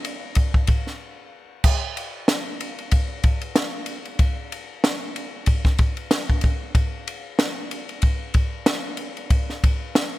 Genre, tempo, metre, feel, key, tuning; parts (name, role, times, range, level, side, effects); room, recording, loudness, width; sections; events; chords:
hip hop; 94 BPM; 4/4; swing 58% on 16ths
compact cocktail drum kit; drums; 0.0-10.1 s; crash cymbal, hi-hat, kick drum, ride cymbal, snare drum; -20 LUFS; equal
light reverb; -20 LUFS; side -17 dB against mid
0.0-1.6 A section; 1.6-10.2 A section
break 1.0-1.6